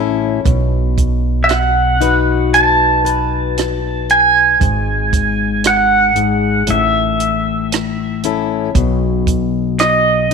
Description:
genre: acoustic folk-pop ballad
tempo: 58 BPM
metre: 4/4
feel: straight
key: B mixolydian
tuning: A4 = 439 Hz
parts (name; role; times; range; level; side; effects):
- fingerpicked plugged-in steel-string acoustic guitar; accompaniment; 0.0-10.3 s; G#2 to B4; -18 LUFS; left 10 dB; none
- upright bass; bass; 0.0-10.3 s; G#1 to B1; -19 LUFS; right 1 dB; none
- compact cocktail drum kit; drums; 0.5-10.3 s; hi-hat, kick drum, rim click; -20 LUFS; right 5 dB; none
- pedal steel guitar; melody; 1.4-10.3 s; D#5 to A5; -13 LUFS; right 3 dB; slapback echo
room: light reverb, small room ambience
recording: 1960s-style stereo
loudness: -12 LUFS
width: side -5 dB against mid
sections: 0.0-10.3 A section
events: none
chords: 0.5 B; 4.6 F#sus2/G#; 6.7 A; 8.8 B

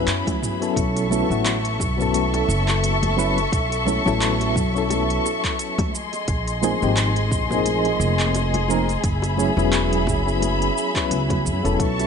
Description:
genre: sunset chillout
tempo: 87 BPM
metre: 4/4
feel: swing 57% on 16ths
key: unclear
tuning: A4 = 441 Hz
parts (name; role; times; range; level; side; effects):
- soft electric-piano-like synth keys; accompaniment; 0.0-12.1 s; E#3 to B4; -23 LUFS; moving between left 4 dB and right 5 dB; chorus, tremolo, auto-pan, digital delay
- dark studio string section; sustained chords; 0.0-12.1 s; G#4 to C#6; -25 LUFS; left 2 dB; none
- upright bass; bass; 0.1-12.1 s; E1 to F#2; -24 LUFS; equal; none
- deep house drum kit; drums; 0.1-12.1 s; handclaps, hi-hat, shaker, toms; -28 LUFS; right 2 dB; small room ambience
- electronic kick drum; drums; 0.3-12.0 s; none; -27 LUFS; equal; small room ambience
- congas and bongos; percussion; 0.3-12.1 s; none; -31 LUFS; left 4 dB; none
- drifting glass-harmonics texture; texture; 11.8-12.1 s; A5; -33 LUFS; right 8 dB; chorus, built-in reverb
room: light reverb, digital ambience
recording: nothing above 10.3 kHz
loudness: -18 LUFS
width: side -6 dB against mid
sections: 0.8-12.1 A section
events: none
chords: 0.0 F#9sus4; 0.8 B9sus4; 5.9 A#9sus4; 9.0 F#9sus4

